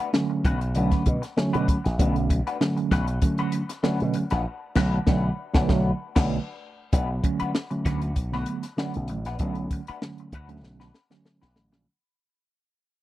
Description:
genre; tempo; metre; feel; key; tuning
funk; 97 BPM; 4/4; straight; B minor; A4 = 441 Hz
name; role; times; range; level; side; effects
clean electric guitar; accompaniment; 0.0-11.8 s; A3 to B4; -33 LUFS; left 5 dB; wah, spring reverb
compact cocktail drum kit; drums; 0.0-11.9 s; crash cymbal, hi-hat, kick drum, snare drum; -24 LUFS; equal; none
mellow tine electric piano; stabs; 0.1-11.9 s; D3 to C#4; -26 LUFS; right 2 dB; medium stereo tremolo
slap bass with an envelope filter; bass; 0.4-11.8 s; A1 to B2; -26 LUFS; equal; none
room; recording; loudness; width
little or no reverb; dry, close 1970s-style studio recording, lossy compression artefacts; -22 LUFS; side -15 dB against mid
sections
0.0-6.9 A section; 6.9-11.9 B section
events
band accent 4.5-6.9; fade-out 6.9-11.9; drum fill 10.6-11.9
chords
0.0 Bm7

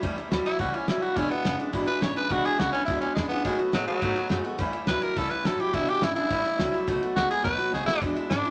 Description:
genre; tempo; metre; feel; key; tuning
rockabilly; 210 BPM; 4/4; straight; E mixolydian; A4 = 440 Hz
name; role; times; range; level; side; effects
picked steel-string acoustic guitar; accompaniment; 0.0-8.5 s; E2 to F#4; -34 LUFS; equal; none
electric guitar through a small old amp; riff; 0.0-8.5 s; E2 to G#3; -33 LUFS; equal; none
upright bass; bass; 0.0-8.5 s; E1 to B2; -40 LUFS; equal; none
cloth-damped thuddy drum kit; drums; 0.0-8.5 s; kick drum, ride cymbal, snare drum; -34 LUFS; equal; none
breathy tenor saxophone; melody; 0.5-8.5 s; F#3 to C#5; -30 LUFS; equal; none
room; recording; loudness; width
wet studio reverb, RT60 0.6 s; nothing above 10.6 kHz; -26 LUFS; mono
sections
0.0-8.0 A section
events
drum fill 7.7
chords
0.0 A7; 1.2 E7; 3.4 B7; 4.6 A7; 5.7 E7; 6.3 A7; 6.9 B7

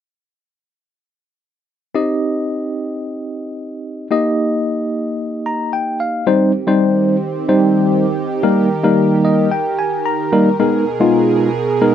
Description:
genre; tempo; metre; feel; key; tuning
pop; 111 BPM; 4/4; straight; unclear; A4 = 440 Hz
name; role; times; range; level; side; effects
tine electric piano; accompaniment; 1.9-11.9 s; G3 to Bb5; -15 LUFS; left 1 dB; auto-pan
soft supersaw; sustained chords; 6.3-11.9 s; Cb3 to Bb4; -19 LUFS; right 5 dB; none
room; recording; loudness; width
wet booth ambience, RT60 0.3 s; none; -14 LUFS; side -9 dB against mid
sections
1.9-6.3 A section; 6.3-11.9 B section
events
tine electric piano fill 5.2-6.3, 9.0-10.6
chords
1.9 Cm; 4.1 Eb; 6.3 Cm; 8.4 Eb; 10.6 Abmadd9

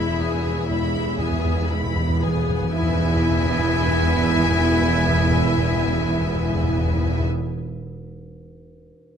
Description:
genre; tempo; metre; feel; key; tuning
classical; 31 BPM; 4/4; rubato; E major; A4 = 440 Hz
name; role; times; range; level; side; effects
warm symphonic violin section; melody; 0.0-7.2 s; G#5 to B5; -31 LUFS; left 4 dB; none
bright clarinet; second line; 0.0-7.2 s; E4; -26 LUFS; left 1 dB; none
rich studio violin section; second line; 0.0-7.2 s; E5; -30 LUFS; left 3 dB; none
rich symphonic viola section; accompaniment; 0.0-7.2 s; G#3 to G#4; -26 LUFS; equal; none
bright symphonic double bass section; bass; 0.0-7.2 s; E1; -27 LUFS; right 4 dB; none
rich symphonic cello section; bass; 0.0-7.2 s; E2; -26 LUFS; right 2 dB; none
timpani; percussion; 0.0-7.3 s; E2; -24 LUFS; left 1 dB; none
room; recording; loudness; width
light reverb; close, detailed microphones; -18 LUFS; side -8 dB against mid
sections
0.0-2.7 A section; 2.7-9.2 B section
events
timpani fill 0.0-2.7; slowing down 0.0-2.7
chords
0.0 E

